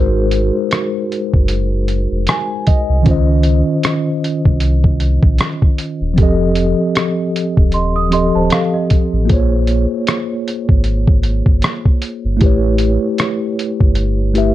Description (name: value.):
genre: lo-fi hip hop.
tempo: 77 BPM.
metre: 4/4.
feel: swing 56% on 16ths.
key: Ab major.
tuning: A4 = 440 Hz.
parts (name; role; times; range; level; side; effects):
mellow tine electric piano; accompaniment; 0.0-14.5 s; Eb3 to Ab5; -17 LUFS; equal; medium stereo tremolo.
sub bass with octave; bass; 0.0-14.5 s; Eb1 to Db2; -16 LUFS; equal; none.
lo-fi sampler-style drum kit; drums; 0.3-14.5 s; hi-hat, kick drum, rim click; -14 LUFS; equal; none.
worn celesta; second line; 7.7-9.3 s; A4 to Eb6; -20 LUFS; right 3 dB; tape echo.
room: light reverb.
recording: dark, warm production.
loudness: -13 LUFS.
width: side -14 dB against mid.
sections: 0.0-14.5 A section.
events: tine electric piano fill 1.9-3.1.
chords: 0.0 Ab7; 3.1 Dbmaj9; 6.2 F7; 9.3 Bbm9; 12.4 A9.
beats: 0.72 1.50 2.28 | 3.06 3.84 4.62 5.40 | 6.18 6.96 7.74 8.52 | 9.30 10.08 10.86 11.63 | 12.41 13.19 13.97.